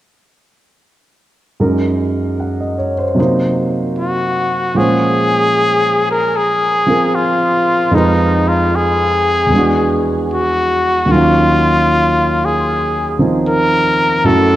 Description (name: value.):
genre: jazz ballad.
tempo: 76 BPM.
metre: 4/4.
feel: swing 66% on 8ths.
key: Bb minor.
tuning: A4 = 437 Hz.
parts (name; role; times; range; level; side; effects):
warm concert grand piano; accompaniment; 1.6-14.6 s; Eb2 to Gb5; -15 LUFS; right 1 dB; none.
breathy trumpet; melody; 4.0-14.6 s; Eb4 to Bb4; -14 LUFS; left 1 dB; none.
room: wet plate reverb, RT60 3.2 s.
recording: dreamy mix soaked in reverb.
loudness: -12 LUFS.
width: side -14 dB against mid.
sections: 1.6-4.8 A section; 4.8-14.6 B section.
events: none.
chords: 1.6 Gb69; 3.2 Cm7b5; 4.8 Bbm9; 7.9 Fm7b5; 9.5 E9; 11.1 Ebm9.